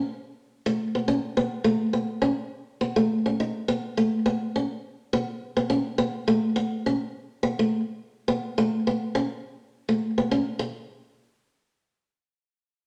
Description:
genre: highlife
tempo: 104 BPM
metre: 4/4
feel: swing 55% on 16ths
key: A major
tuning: A4 = 441 Hz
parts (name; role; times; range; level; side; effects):
- picked old ladder-braced acoustic guitar; solo; 0.0-10.6 s; A3 to D#4; -26 LUFS; equal; none
room: wet large studio reverb, RT60 1.2 s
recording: none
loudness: -26 LUFS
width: mono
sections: 0.0-10.6 A section; 10.6-12.9 B section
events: none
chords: none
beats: 0.21 0.79 | 1.37 1.95 2.53 3.10 | 3.68 4.26 4.84 5.42 | 5.99 6.57 7.14 7.72 | 8.30 8.87 9.45 10.03 | 10.60

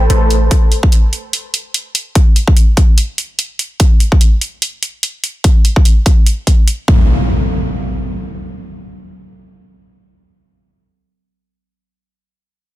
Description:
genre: future bass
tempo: 146 BPM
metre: 4/4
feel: swing 56% on 16ths, half-time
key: A minor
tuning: A4 = 440 Hz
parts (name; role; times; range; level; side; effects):
- supersaw stab; riff; 0.0-0.5 s; A3 to A5; -19 LUFS; equal; sidechain pumping, low-pass filter, ping-pong delay
- warm 808-style bass; bass; 0.0-0.5 s; A1; -11 LUFS; equal; sidechain pumping
- electronic hi-hat; drums; 0.1-6.8 s; none; -18 LUFS; right 1 dB; overdrive, small room ambience
- electronic kick drum; drums; 0.5-7.0 s; none; -9 LUFS; equal; overdrive, small room ambience
- impact; sound effects; 6.9-11.2 s; none; -17 LUFS; equal; none
room: digital ambience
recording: dense, heavily limited modern master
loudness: -11 LUFS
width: side -16 dB against mid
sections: 0.0-7.1 A section; 7.1-10.4 B section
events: none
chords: 0.0 Amadd9; 0.5 N.C.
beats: 0.10 | 0.51 0.92 1.33 1.74 | 2.15 2.56 2.98 3.39 | 3.80 4.21 4.62 5.03 | 5.44 5.85 6.26 6.67 | 7.09 7.50 7.91 8.32 | 8.73 9.14 9.55 9.96

